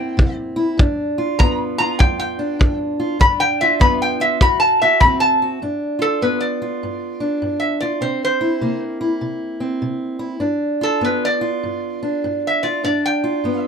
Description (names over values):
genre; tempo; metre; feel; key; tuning
acoustic country blues, solo or duo; 100 BPM; 4/4; swing 65% on 8ths; G mixolydian; A4 = 439 Hz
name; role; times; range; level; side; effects
metal-body resonator slide guitar; melody; 0.0-13.6 s; A4 to B5; -18 LUFS; equal; none
fingerpicked steel-string acoustic guitar; accompaniment; 0.0-13.7 s; G2 to F#4; -21 LUFS; equal; none
kick drum; drums; 0.2-5.2 s; none; -15 LUFS; equal; none
room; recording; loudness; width
moderate booth ambience, RT60 0.2 s; close, detailed microphones; -16 LUFS; side -6 dB against mid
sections
0.0-5.6 A section; 5.6-13.7 B section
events
resonator guitar played with a steel bar solo 0.0-5.6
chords
0.0 C7; 0.8 G7; 4.4 D7; 5.6 G7; 8.0 C7; 10.4 G7